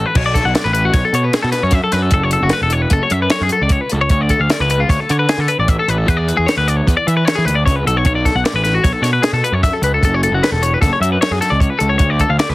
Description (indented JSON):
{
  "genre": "math rock and midwest emo",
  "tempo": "152 BPM",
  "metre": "5/4",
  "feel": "straight",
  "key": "unclear",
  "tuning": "A4 = 439 Hz",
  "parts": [
    { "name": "twelve-string electric guitar", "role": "arpeggios", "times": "0.0-12.5 s", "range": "F4 to F#5", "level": "-17 LUFS", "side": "left 3 dB", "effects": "plate reverb" },
    { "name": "fuzz picked electric bass", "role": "bass", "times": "0.0-12.5 s", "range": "E1 to E3", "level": "-17 LUFS", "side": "right 1 dB", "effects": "overdrive" },
    { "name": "compact cocktail drum kit", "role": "drums", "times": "0.2-12.5 s", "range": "crash cymbal, hi-hat, kick drum, snare drum", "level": "-17 LUFS", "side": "equal", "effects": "none" }
  ],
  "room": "light reverb",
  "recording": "heavily compressed radio sound, multiband compression",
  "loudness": "-13 LUFS",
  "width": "side -18 dB against mid",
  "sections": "0.2-12.5 A section",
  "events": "none",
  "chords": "0.2 B7sus2; 2.1 F#m7; 4.1 D5; 6.1 E7(no3); 8.0 B7sus2; 10.0 F#m7; 12.0 Dm",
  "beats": "| 0.15 0.55 0.94 1.34 1.73 | 2.13 2.52 2.92 3.31 3.71 | 4.10 4.50 4.89 5.28 5.68 | 6.07 6.47 6.86 7.26 7.65 | 8.05 8.44 8.84 9.23 9.63 | 10.02 10.42 10.81 11.21 11.60 | 12.00 12.39"
}